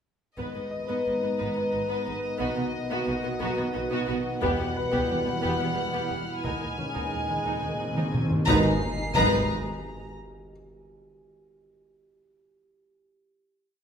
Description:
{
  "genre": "cinematic, suspense film score",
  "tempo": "89 BPM",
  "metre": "3/4",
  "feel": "straight",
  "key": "G# minor",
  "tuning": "A4 = 440 Hz",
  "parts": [
    { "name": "clear studio violin section", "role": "melody", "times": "0.4-9.5 s", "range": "D#5 to A#5", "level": "-33 LUFS", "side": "left 3 dB", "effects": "none" },
    { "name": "dark studio violin section", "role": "second line", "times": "0.4-9.5 s", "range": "F#4 to B4", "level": "-34 LUFS", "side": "left 1 dB", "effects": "none" },
    { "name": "rich studio viola section", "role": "accompaniment", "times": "0.4-9.5 s", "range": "B3 to D#4", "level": "-34 LUFS", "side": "right 1 dB", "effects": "none" },
    { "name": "dark trombone section", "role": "sustained chords", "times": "0.4-8.8 s", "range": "G#2 to E3", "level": "-35 LUFS", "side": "right 2 dB", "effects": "none" },
    { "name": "mellow French horn section", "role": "sustained chords", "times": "0.4-8.8 s", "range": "G3 to B4", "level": "-34 LUFS", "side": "left 3 dB", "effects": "none" },
    { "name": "warbly tape-like pad", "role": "sustained chords", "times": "1.0-8.9 s", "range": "E4 to A#5", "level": "-36 LUFS", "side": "equal", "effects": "chorus, built-in reverb" },
    { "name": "warm chamber double bass section", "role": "bass", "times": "0.4-9.5 s", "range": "E1 to D#2", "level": "-36 LUFS", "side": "right 2 dB", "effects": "none" },
    { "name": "warm studio cello section", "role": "bass", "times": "0.4-9.5 s", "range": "D#2 to B2", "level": "-35 LUFS", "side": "right 3 dB", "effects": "none" },
    { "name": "taiko ensemble", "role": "drums", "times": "0.4-10.5 s", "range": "none", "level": "-33 LUFS", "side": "equal", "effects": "none" },
    { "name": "bright grand piano", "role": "texture", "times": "0.7-8.5 s", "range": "C#4 to A#5", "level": "-37 LUFS", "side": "left 3 dB", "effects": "none" },
    { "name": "warm studio violin section", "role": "texture", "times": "4.4-10.1 s", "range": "A#5 to B#6", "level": "-40 LUFS", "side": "right 1 dB", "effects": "none" },
    { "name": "timpani", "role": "percussion", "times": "6.4-9.5 s", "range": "G#2 to D#3", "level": "-33 LUFS", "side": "equal", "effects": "none" },
    { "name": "swell and impact", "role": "sound effects", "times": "7.8-10.5 s", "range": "none", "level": "-38 LUFS", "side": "equal", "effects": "none" }
  ],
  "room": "wet recital hall reverb, RT60 1.5 s",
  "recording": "recorded in a church or concert hall",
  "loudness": "-25 LUFS",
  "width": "side -7 dB against mid",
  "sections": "0.4-8.5 A section; 8.5-10.5 final chord",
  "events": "timpani fill 6.5-8.5; swell 7.8-8.5; drum fill 8.0-8.5; impact 8.5-10.5",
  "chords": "0.4 G#madd9; 2.4 B; 4.4 Emadd9; 6.5 D#sus4; 8.5 G#madd9"
}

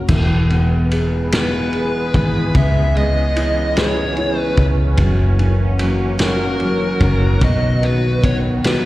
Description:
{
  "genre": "six-eight pop ballad",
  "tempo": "49 BPM (dotted quarters)",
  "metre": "6/8",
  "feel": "straight",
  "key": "unclear",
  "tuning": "A4 = 439 Hz",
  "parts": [
    { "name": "felt-muted upright piano", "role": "accompaniment", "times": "0.0-8.9 s", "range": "C#3 to B4", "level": "-22 LUFS", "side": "left 1 dB", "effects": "slapback echo" },
    { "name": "sweeping resonant pad", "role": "sustained chords", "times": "0.0-8.9 s", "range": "D#3 to B4", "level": "-23 LUFS", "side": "right 2 dB", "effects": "chorus, tremolo" },
    { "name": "vintage muted fingered electric bass", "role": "bass", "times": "0.1-8.9 s", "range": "E1 to C#2", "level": "-18 LUFS", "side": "equal", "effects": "none" },
    { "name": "loose indie drum kit", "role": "drums", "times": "0.1-8.8 s", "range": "crash cymbal, kick drum, ride cymbal, snare drum", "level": "-21 LUFS", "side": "equal", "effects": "none" },
    { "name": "dark smooth lead guitar", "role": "melody", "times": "1.3-8.9 s", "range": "A#4 to E5", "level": "-22 LUFS", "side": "left 1 dB", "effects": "overdrive, plate reverb, slapback echo, tape echo" }
  ],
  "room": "light reverb",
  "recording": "live gig heard through the venue's PA, recital hall reverb",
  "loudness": "-14 LUFS",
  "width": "side -17 dB against mid",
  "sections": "0.1-8.9 A section",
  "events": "none",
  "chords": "0.1 E; 2.5 C#m7; 5.0 F#7; 7.4 B"
}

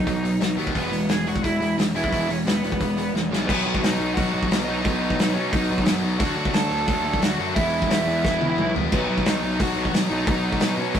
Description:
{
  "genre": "punk rock",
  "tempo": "176 BPM",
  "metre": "4/4",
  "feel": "straight",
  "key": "B mixolydian from 3.5 s",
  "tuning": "A4 = 440 Hz",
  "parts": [
    { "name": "smooth overdriven lead guitar", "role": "melody", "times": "0.0-11.0 s", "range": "B3 to A5", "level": "-26 LUFS", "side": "right 1 dB", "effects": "none" },
    { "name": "distorted electric guitar", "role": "riff", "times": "0.0-11.0 s", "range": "B2 to E4", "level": "-29 LUFS", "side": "right 5 dB", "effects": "distortion" },
    { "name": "tight distorted guitar", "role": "riff", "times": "0.0-11.0 s", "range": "B2 to F#4", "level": "-29 LUFS", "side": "left 7 dB", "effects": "distortion" },
    { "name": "fuzz picked electric bass", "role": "bass", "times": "0.0-11.0 s", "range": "E1 to B2", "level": "-27 LUFS", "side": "equal", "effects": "overdrive" },
    { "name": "loose indie drum kit", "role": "drums", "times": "0.1-11.0 s", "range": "crash cymbal, hi-hat, kick drum, snare drum, toms", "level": "-24 LUFS", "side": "equal", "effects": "none" }
  ],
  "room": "light reverb",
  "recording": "rough rehearsal-room recording",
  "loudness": "-20 LUFS",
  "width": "side -8 dB against mid",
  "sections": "0.0-3.5 A section; 3.5-11.0 B section",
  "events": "drum fill 3.1-3.5, 8.2-8.9",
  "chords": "0.0 B; 0.8 E; 3.5 B; 6.2 D; 7.6 E; 8.9 B"
}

